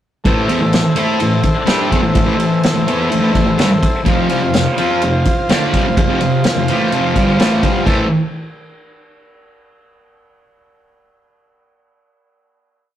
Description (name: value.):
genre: garage rock duo or trio.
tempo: 126 BPM.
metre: 4/4.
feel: straight.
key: A minor.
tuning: A4 = 440 Hz.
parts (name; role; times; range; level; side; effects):
combo organ; sustained chords; 0.2-8.1 s; F4 to F5; -20 LUFS; equal; none.
thick fuzz guitar; riff; 0.2-8.0 s; F2 to A4; -15 LUFS; equal; distortion.
vintage drum kit; drums; 0.3-8.0 s; crash cymbal, kick drum, ride cymbal, snare drum; -17 LUFS; equal; none.
room: moderate stone room reverb, RT60 1.2 s.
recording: rough rehearsal-room recording, tube saturation.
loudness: -12 LUFS.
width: side -11 dB against mid.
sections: 0.3-7.9 riff; 7.9-9.7 final chord.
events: none.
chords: 0.3 Am; 4.1 F5; 7.9 Am.